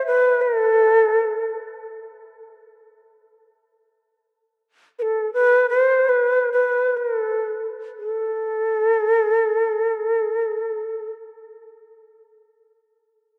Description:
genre	japanese traditional, Japanese chamber music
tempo	free time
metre	none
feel	none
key	A hirajoshi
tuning	A4 = 440 Hz
part	breathy shakuhachi	solo	0.0-1.5, 5.0-11.1 s	A4 to C5	-20 LUFS	equal	none
room	wet church reverb, RT60 3.8 s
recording	dark, warm production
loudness	-20 LUFS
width	mono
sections	0.0-8.0 A section; 8.0-12.3 B section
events	slowing down 4.6-8.0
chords	none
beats	free time

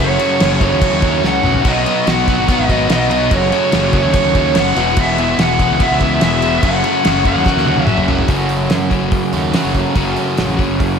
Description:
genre	classic rock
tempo	144 BPM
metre	4/4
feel	straight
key	F# dorian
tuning	A4 = 440 Hz
part	bluesy overdriven lead guitar	melody	0.0-8.1 s	C#5 to F#5	-17 LUFS	right 1 dB	distortion
part	picked acoustic archtop guitar	accompaniment	0.0-11.0 s	E2 to F#4	-27 LUFS	right 4 dB	none
part	crunchy overdriven guitar	riff	0.0-11.0 s	E2 to B3	-18 LUFS	left 9 dB	none
part	crunchy overdriven guitar	riff	0.0-11.0 s	E2 to G#4	-20 LUFS	right 9 dB	slapback echo
part	fuzz fingered electric bass	bass	0.0-11.0 s	E1 to F#2	-21 LUFS	equal	overdrive
part	damped 70s drum kit	drums	0.2-10.9 s	crash cymbal, hi-hat, kick drum, snare drum, toms	-18 LUFS	equal	none
room	moderate lush hall reverb, RT60 1.6 s, studio ambience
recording	big arena sound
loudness	-12 LUFS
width	side -6 dB against mid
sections	0.0-8.3 A section; 8.3-11.0 B section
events	drum fill 1.2-1.7, 7.5-8.3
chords	0.0 F#m; 1.7 B; 3.3 F#m; 4.8 Eadd9; 6.6 F#m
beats	0.40 0.82 1.24 | 1.66 2.07 2.49 2.90 | 3.32 3.73 4.15 4.56 | 4.98 5.39 5.80 6.22 | 6.63 7.05 7.46 7.88 | 8.29 8.71 9.13 9.55 | 9.97 10.39 10.81

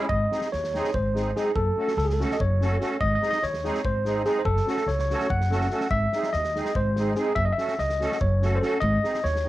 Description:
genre	balkan folk, Balkan wedding band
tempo	289 BPM (eighths)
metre	7/8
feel	straight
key	unclear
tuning	A4 = 440 Hz
part	musette accordion	accompaniment	0.0-9.5 s	G#3 to A4	-29 LUFS	right 2 dB	cassette tape, plate reverb
part	tine electric piano	melody	0.1-9.5 s	G#4 to F#5	-26 LUFS	equal	fast stereo tremolo, cassette tape, plate reverb
part	upright bass	bass	0.1-9.5 s	F#1 to D#2	-26 LUFS	equal	none
part	loose indie drum kit	percussion	0.1-9.5 s	kick drum, snare drum	-34 LUFS	equal	cassette tape
room	light reverb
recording	home recording on cassette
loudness	-22 LUFS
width	side -16 dB against mid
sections	0.1-9.5 A section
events	none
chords	0.1 G#; 1.5 F#m; 3.0 G#; 4.5 F#m; 5.9 G#; 7.4 F#m; 8.8 G#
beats	| 0.10 0.30 0.51 0.72 0.93 1.13 1.34 | 1.55 1.76 1.96 2.17 2.38 2.59 2.79 | 3.00 3.21 3.42 3.63 3.83 4.04 4.25 | 4.46 4.67 4.87 5.08 5.29 5.50 5.70 | 5.91 6.12 6.33 6.53 6.74 6.95 7.16 | 7.36 7.57 7.78 7.99 8.19 8.40 8.61 | 8.82 9.02 9.23 9.44

